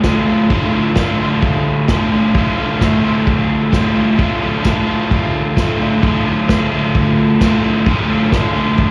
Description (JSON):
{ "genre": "garage rock duo or trio", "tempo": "130 BPM", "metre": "4/4", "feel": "straight", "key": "D minor", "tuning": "A4 = 435 Hz", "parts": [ { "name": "crunchy overdriven guitar", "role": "riff", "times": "0.0-8.9 s", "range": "D2 to F4", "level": "-16 LUFS", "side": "equal", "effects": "spring reverb, slapback echo" }, { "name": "vintage drum kit", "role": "drums", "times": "0.0-8.9 s", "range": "crash cymbal, kick drum, snare drum", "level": "-20 LUFS", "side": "equal", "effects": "vintage 12-bit sampler grit" }, { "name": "tambourine", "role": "percussion", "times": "0.0-8.4 s", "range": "none", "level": "-40 LUFS", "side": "equal", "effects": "none" } ], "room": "light reverb, small room reverb", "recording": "live gig heard through the venue's PA, cassette tape, recital hall reverb", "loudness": "-15 LUFS", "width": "mono", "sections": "0.0-8.9 A section", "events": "none", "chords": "0.0 Dm" }